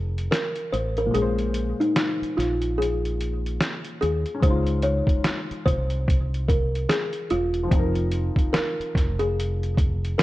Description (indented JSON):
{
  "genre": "lo-fi hip hop",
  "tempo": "73 BPM",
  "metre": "4/4",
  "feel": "swing 59% on 16ths",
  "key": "Bb minor",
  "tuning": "A4 = 440 Hz",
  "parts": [
    { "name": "kalimba", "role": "melody", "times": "0.0-10.2 s", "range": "Eb4 to Db5", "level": "-27 LUFS", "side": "equal", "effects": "low-pass filter" },
    { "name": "felt-muted upright piano", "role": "accompaniment", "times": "0.0-10.2 s", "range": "Bb2 to C5", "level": "-31 LUFS", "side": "left 3 dB", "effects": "cassette tape, low-pass filter" },
    { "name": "deep dub fingered electric bass", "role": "bass", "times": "0.0-10.1 s", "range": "E1 to Eb2", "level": "-26 LUFS", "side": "equal", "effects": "none" },
    { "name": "trip hop sampler-style drum kit", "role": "drums", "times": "0.2-10.2 s", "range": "hi-hat, kick drum, snare drum", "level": "-24 LUFS", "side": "equal", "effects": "none" }
  ],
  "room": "light reverb",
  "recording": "cassette tape",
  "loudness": "-21 LUFS",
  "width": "side -17 dB against mid",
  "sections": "0.0-10.2 A section",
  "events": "break 0.0-4.4",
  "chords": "0.0 Fm7; 1.1 Bbm9; 4.4 Dbmaj9; 7.7 F7sus4"
}